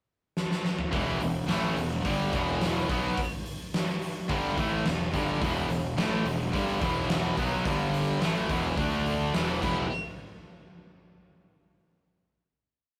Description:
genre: hard rock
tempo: 107 BPM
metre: 4/4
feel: straight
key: E minor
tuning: A4 = 440 Hz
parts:
  - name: huge arena drum kit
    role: drums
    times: 0.4-9.8 s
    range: crash cymbal, hi-hat, kick drum, snare drum, toms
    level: -34 LUFS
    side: equal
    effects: none
  - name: cranked stack guitar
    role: riff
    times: 0.9-9.8 s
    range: E2 to D4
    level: -34 LUFS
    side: equal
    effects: overdrive
  - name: heavy high-gain guitar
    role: riff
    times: 0.9-9.8 s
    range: E2 to G4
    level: -37 LUFS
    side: equal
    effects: distortion
  - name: tight distorted guitar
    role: riff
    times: 0.9-9.8 s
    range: E2 to D4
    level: -37 LUFS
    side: equal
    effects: distortion
  - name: fuzz picked electric bass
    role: bass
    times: 0.9-9.9 s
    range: E1 to D2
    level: -34 LUFS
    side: equal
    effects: overdrive
room: moderate studio reverb, RT60 0.6 s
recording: rough rehearsal-room recording, warm saturation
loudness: -29 LUFS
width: mono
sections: 0.0-0.9 pickup bar; 0.9-9.9 riff; 9.9-12.1 final hit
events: drum fill 0.4-0.9, 9.6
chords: 0.0 N.C.; 0.9 Em; 7.7 G5; 8.2 E5; 8.8 D5; 9.3 E5; 9.6 Em; 9.9 N.C.

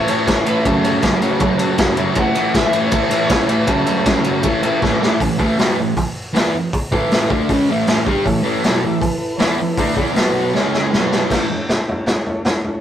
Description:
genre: garage rock duo or trio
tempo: 158 BPM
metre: 4/4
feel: straight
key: A major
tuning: A4 = 444 Hz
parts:
  - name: electric slide guitar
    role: melody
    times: 0.0-4.3 s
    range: A4 to F#5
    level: -23 LUFS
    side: left 1 dB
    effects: none
  - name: combo organ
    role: sustained chords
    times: 0.0-5.2, 8.2-12.8 s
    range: E4 to A5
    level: -25 LUFS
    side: left 1 dB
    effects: none
  - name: fuzz guitar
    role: riff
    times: 0.0-11.5 s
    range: F#2 to G4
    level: -17 LUFS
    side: equal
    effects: distortion
  - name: raw garage drum kit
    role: drums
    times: 0.1-12.7 s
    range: crash cymbal, hi-hat, kick drum, ride cymbal, snare drum, toms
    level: -18 LUFS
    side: equal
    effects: none
room: moderate stone room reverb, RT60 1.3 s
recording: rough rehearsal-room recording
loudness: -14 LUFS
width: side -10 dB against mid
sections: 0.0-5.2 A section; 5.2-11.3 B section; 11.3-12.8 C section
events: transistor combo organ fill 1.4-2.2; drum fill 4.8-5.2, 10.5-11.3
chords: 0.0 A; 0.7 F#m; 2.2 A; 3.7 F#m; 4.5 A; 10.2 B5; 10.5 C#5; 10.9 B5; 11.3 A

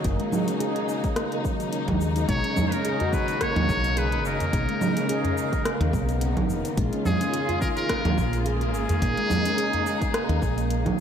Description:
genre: organic downtempo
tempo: 107 BPM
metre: 4/4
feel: swing 55% on 16ths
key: unclear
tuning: A4 = 440 Hz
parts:
  - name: warm symphonic string section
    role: sustained chords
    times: 0.0-11.0 s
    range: C#3 to E#4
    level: -31 LUFS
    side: left 2 dB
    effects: vintage 12-bit sampler grit, sidechain pumping
  - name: handpan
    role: arpeggios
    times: 0.0-11.0 s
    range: D#3 to G#4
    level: -28 LUFS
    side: right 1 dB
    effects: ping-pong delay
  - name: woody fretless electric bass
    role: bass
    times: 0.0-11.0 s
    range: F#1 to D#2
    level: -26 LUFS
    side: left 1 dB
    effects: sidechain pumping
  - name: deep house drum kit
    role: drums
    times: 0.0-11.0 s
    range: congas, hi-hat, rim click, shaker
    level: -30 LUFS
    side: right 3 dB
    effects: overdrive
  - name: electronic kick drum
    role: drums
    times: 0.0-11.0 s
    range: none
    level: -29 LUFS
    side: equal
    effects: overdrive
  - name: trumpet with metal mute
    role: melody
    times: 2.3-10.7 s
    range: G#4 to C#5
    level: -29 LUFS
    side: equal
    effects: ping-pong delay
  - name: udu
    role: percussion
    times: 2.6-9.8 s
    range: none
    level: -30 LUFS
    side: equal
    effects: none
room: moderate lush hall reverb, RT60 2.0 s, small room ambience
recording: dreamy mix soaked in reverb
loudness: -22 LUFS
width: side -8 dB against mid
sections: 0.0-11.0 A section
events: none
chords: 0.0 F#6; 2.3 Bmaj9; 6.8 A#m7

